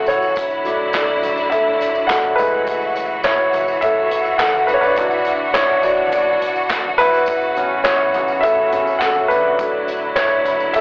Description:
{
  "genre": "piano-driven pop",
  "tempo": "104 BPM",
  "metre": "4/4",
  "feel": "straight",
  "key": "A major",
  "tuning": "A4 = 439 Hz",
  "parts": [
    { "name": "warm grand piano", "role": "accompaniment", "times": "0.0-10.8 s", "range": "F#3 to F#5", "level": "-16 LUFS", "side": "equal", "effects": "none" },
    { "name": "warm studio string section", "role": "sustained chords", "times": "0.0-10.8 s", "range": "C#3 to F#4", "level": "-22 LUFS", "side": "equal", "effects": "none" },
    { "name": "picked electric bass", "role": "bass", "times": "0.0-10.8 s", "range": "E1 to B1", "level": "-36 LUFS", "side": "equal", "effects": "transformer saturation" },
    { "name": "unplugged drum kit", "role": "drums", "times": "0.1-10.8 s", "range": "handclaps, hi-hat, kick drum, snare drum, toms", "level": "-23 LUFS", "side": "equal", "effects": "soft clipping on snare" },
    { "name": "tambourine", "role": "percussion", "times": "0.1-10.8 s", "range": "none", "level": "-44 LUFS", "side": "right 1 dB", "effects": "none" }
  ],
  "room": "moderate concert hall reverb, RT60 1.7 s, studio reverb",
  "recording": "blown-out, overdriven recording, overdrive, telephone sound",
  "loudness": "-14 LUFS",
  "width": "side -31 dB against mid",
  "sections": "0.0-10.8 A section",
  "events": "grand piano solo 0.0-10.8",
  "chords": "0.4 E7sus4; 2.4 F#m7; 5.0 Dadd9/F#; 7.3 A6; 9.6 E7sus4"
}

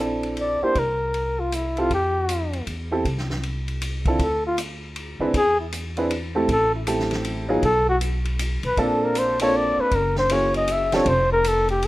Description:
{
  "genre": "jazz, small-group swing and bop",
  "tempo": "157 BPM",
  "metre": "3/4",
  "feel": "swing 64% on 8ths",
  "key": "F major",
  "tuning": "A4 = 440 Hz",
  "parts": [
    { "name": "warm upright piano", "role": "accompaniment", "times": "0.0-11.1 s", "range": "D3 to B4", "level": "-24 LUFS", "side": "right 1 dB", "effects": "none" },
    { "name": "upright bass", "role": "bass", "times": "0.0-11.9 s", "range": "F1 to F2", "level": "-28 LUFS", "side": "equal", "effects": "none" },
    { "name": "vintage drum kit", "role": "drums", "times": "0.2-11.9 s", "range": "hi-hat, kick drum, ride cymbal, snare drum", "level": "-31 LUFS", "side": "equal", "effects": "none" },
    { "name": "breathy flugelhorn", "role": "melody", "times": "0.4-11.9 s", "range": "E4 to E5", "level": "-21 LUFS", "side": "left 1 dB", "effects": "none" }
  ],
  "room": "light reverb",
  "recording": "rough home demo mix",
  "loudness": "-20 LUFS",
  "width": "side -17 dB against mid",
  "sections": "0.0-4.2 A section; 4.2-11.9 B section",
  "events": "none",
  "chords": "0.0 Bbmaj9#11; 0.8 C; 1.9 Fmaj7sus2; 4.2 N.C.; 5.3 E(#5, no3); 6.5 Am7; 7.6 B5; 8.8 Bbmaj9; 9.9 F#9; 11.1 Fadd9"
}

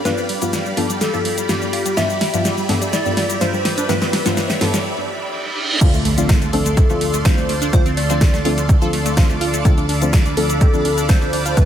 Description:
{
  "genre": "progressive house",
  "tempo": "125 BPM",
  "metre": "4/4",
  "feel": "straight",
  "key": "D dorian",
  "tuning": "A4 = 436 Hz",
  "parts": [
    { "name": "plucky unison lead", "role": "melody", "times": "0.0-11.7 s", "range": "G4 to E5", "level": "-24 LUFS", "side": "left 1 dB", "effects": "digital delay" },
    { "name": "supersaw pad", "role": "sustained chords", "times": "0.0-11.7 s", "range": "G4 to C6", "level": "-26 LUFS", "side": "right 1 dB", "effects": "phaser, sidechain pumping" },
    { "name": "deep mellow chord stab", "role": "stabs", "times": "0.0-11.7 s", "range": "G2 to A4", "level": "-23 LUFS", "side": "left 2 dB", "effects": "chorus, sidechain pumping, digital delay" },
    { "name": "plucky analog bass", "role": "bass", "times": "0.0-11.7 s", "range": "G1 to D2", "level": "-24 LUFS", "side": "equal", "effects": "sidechain pumping, high-pass filter" },
    { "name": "riser, reverse cymbal and impact", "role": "sound effects", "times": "1.0-7.7 s", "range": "none", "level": "-26 LUFS", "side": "right 1 dB", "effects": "none" },
    { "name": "wide unison pluck", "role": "arpeggios", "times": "0.1-11.6 s", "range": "G3 to A4", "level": "-26 LUFS", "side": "right 1 dB", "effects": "vintage 12-bit sampler grit, sidechain pumping, digital delay" },
    { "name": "big-room dance drum kit", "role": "drums", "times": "0.1-11.7 s", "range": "crash cymbal, hi-hat, shaker, snare drum", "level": "-23 LUFS", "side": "equal", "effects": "sidechain pumping on hats, sidechain pumping on perc, sidechain pumping on cymbals" },
    { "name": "electronic kick drum", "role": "drums", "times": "5.8-11.7 s", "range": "none", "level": "-14 LUFS", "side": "equal", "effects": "none" },
    { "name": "twinkling granular texture", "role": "texture", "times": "6.0-11.7 s", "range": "D4 to D5", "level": "-32 LUFS", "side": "equal", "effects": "built-in reverb, sidechain pumping" }
  ],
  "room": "light reverb",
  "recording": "none",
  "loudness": "-15 LUFS",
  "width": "side -10 dB against mid",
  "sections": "0.0-5.8 A section; 5.8-11.7 B section",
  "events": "build-up 0.0-5.8; drum fill 0.0-4.9; riser 1.0-4.9; filter sweep on synth pluck 0.0-5.8; break 4.9-5.8; reverse cymbal 4.9-5.8; drop 5.8-11.7; impact 5.8-7.7",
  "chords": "0.0 G7; 5.8 Dm7"
}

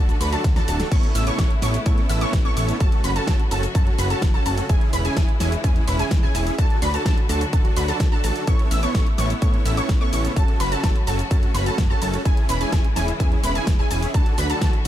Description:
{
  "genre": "EDM, festival progressive house",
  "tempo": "127 BPM",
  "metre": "4/4",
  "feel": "straight",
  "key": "A major",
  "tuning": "A4 = 440 Hz",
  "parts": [
    { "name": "clear studio string section", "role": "sustained chords", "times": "0.0-14.9 s", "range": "C#3 to F#4", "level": "-32 LUFS", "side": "left 1 dB", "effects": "sidechain pumping" },
    { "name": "wide unison pluck", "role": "arpeggios", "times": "0.0-14.9 s", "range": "G#5 to E6", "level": "-28 LUFS", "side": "equal", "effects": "ensemble chorus, sidechain pumping, dub echo" },
    { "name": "dense compressed supersaw", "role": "riff", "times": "0.0-14.9 s", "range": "B3 to E5", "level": "-27 LUFS", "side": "right 2 dB", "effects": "sidechain pumping, dub echo" },
    { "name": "fat analog bass", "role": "bass", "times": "0.0-14.9 s", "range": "D1 to A2", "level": "-25 LUFS", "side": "equal", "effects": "sidechain pumping" },
    { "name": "big-room dance drum kit", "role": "drums", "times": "0.1-14.9 s", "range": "crash cymbal, hi-hat, ride cymbal, shaker, snare drum", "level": "-30 LUFS", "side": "equal", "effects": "studio reverb" },
    { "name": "electronic kick drum", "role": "drums", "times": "0.4-14.7 s", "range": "none", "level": "-19 LUFS", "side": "equal", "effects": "studio reverb" }
  ],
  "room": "little or no reverb",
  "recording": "dark, warm production",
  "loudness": "-18 LUFS",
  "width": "side -12 dB against mid",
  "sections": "0.0-14.9 A section",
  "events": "drum fill 0.4-0.9",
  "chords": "0.0 D; 0.9 Aadd9; 2.8 F#m; 4.7 C#m/E; 6.6 D; 8.5 Aadd9; 10.4 F#m; 12.3 C#m/E; 14.1 D"
}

